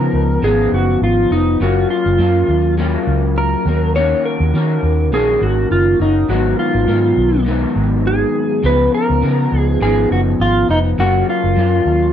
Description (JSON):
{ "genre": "indie pop", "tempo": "102 BPM", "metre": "4/4", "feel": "swing 55% on 16ths", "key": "unclear", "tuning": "A4 = 441 Hz", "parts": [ { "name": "clean lap steel guitar", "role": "melody", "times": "0.0-12.1 s", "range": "D#4 to C#5", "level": "-17 LUFS", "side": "right 1 dB", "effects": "analog chorus, slapback echo" }, { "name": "electric guitar through a small old amp", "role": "accompaniment", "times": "0.0-12.1 s", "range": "G#2 to F#4", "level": "-18 LUFS", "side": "left 3 dB", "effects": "analog chorus, vibrato effect" }, { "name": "vintage muted fingered electric bass", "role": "bass", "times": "0.0-12.1 s", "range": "E#1 to D#3", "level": "-17 LUFS", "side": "right 1 dB", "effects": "none" } ], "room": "light reverb", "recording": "dry, close 1970s-style studio recording", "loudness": "-13 LUFS", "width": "side -9 dB against mid", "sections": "0.0-12.1 A section", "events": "none", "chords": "0.0 C#9; 1.6 F#maj7; 3.7 D#m7; 6.3 G#m7; 8.6 C#9; 11.0 F#maj7" }